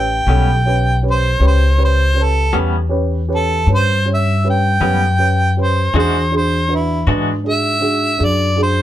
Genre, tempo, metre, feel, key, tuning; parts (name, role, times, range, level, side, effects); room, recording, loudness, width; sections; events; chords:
blues; 53 BPM (dotted quarters); 12/8; straight; A mixolydian; A4 = 440 Hz
warm harmonica; melody; 0.0-8.8 s; E4 to G5; -18 LUFS; right 1 dB; overdrive
dark upright piano; accompaniment; 0.0-8.8 s; C#4 to C#5; -21 LUFS; right 2 dB
upright bass; bass; 0.0-8.8 s; A1 to G#2; -16 LUFS; left 1 dB
twangy electric guitar; accompaniment; 0.3-7.3 s; A2 to F#4; -21 LUFS; left 3 dB; tremolo
light reverb; band playing live in one room; -13 LUFS; side -12 dB against mid
0.0-8.8 A section
harmonica solo 0.0-8.8
0.0 A9; 5.9 E9